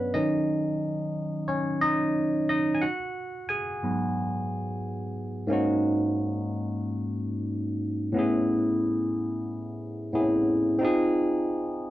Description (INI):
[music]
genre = soul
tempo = 90 BPM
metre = 4/4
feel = swing 54% on 16ths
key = unclear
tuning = A4 = 435 Hz
[part]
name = barky tine electric piano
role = solo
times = 0.0-11.9 s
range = G2 to G#5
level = -25 LUFS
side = equal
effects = phaser
[sound]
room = moderate studio ambience, RT60 0.5 s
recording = band playing live in one room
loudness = -25 LUFS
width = side -14 dB against mid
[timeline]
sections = 0.0-5.5 A section; 5.5-11.9 A section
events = tine electric piano solo 0.0-5.5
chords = 0.2 D#m7; 2.8 G#m7; 5.5 Ab9sus4; 8.2 Amaj9; 10.8 Fm7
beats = | 0.16 0.83 1.49 2.16 | 2.83 3.49 4.16 4.83 | 5.49 6.16 6.83 7.49 | 8.16 8.82 9.49 10.16 | 10.82 11.49